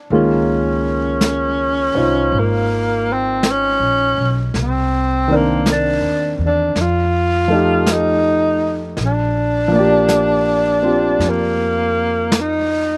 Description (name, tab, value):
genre	jazz ballad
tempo	54 BPM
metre	4/4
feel	swing 67% on 8ths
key	Bb major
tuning	A4 = 438 Hz
part	warm baby grand piano	accompaniment	0.0-13.0 s	Eb3 to D5	-22 LUFS	equal	none
part	breathy tenor saxophone	melody	0.1-13.0 s	Bb3 to F4	-19 LUFS	equal	slapback echo
part	upright bass	bass	0.1-13.0 s	Ab1 to F2	-25 LUFS	equal	none
part	vintage brush drum kit	drums	0.1-13.0 s	brushed snare drum, hi-hat, snare drum	-25 LUFS	equal	none
room	little or no reverb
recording	recorded outdoors, with no room sound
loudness	-17 LUFS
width	mono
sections	0.0-13.0 A section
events	none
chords	0.1 Db69; 4.5 Cm9; 6.8 F9; 9.0 Bb6